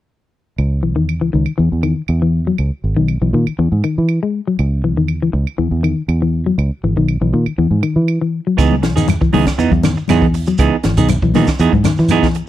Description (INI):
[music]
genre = afrobeat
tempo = 120 BPM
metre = 4/4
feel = straight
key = C# dorian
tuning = A4 = 440 Hz
[part]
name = fingered electric bass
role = bass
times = 0.6-12.2 s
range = G#1 to E3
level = -16 LUFS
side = right 1 dB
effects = none
[part]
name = claves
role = percussion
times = 0.6-12.2 s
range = none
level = -29 LUFS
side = right 18 dB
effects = none
[part]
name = semi-hollow electric guitar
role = arpeggios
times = 0.8-12.4 s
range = D#3 to G#3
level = -17 LUFS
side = left 4 dB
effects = none
[part]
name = clean electric guitar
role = stabs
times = 8.6-12.4 s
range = E3 to G#4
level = -17 LUFS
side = right 7 dB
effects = none
[part]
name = compact cocktail drum kit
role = drums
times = 8.6-12.5 s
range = hi-hat, kick drum, snare drum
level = -19 LUFS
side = right 1 dB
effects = none
[part]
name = shekere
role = percussion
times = 8.6-12.5 s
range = none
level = -23 LUFS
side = right 3 dB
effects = none
[part]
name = congas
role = percussion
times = 8.7-12.2 s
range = none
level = -20 LUFS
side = left 10 dB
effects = none
[sound]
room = studio reverb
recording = dry, close 1970s-style studio recording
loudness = -13 LUFS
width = side -13 dB against mid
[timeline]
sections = 0.6-12.5 A section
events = none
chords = 0.6 C#m9; 1.6 N.C.; 2.6 C#7sus2; 3.6 Emaj7; 4.6 C#m9; 5.6 N.C.; 6.6 C#m9; 7.6 Emaj7(no3); 8.6 C#m9; 9.6 Emaj7; 10.6 C#m9; 11.6 Emaj7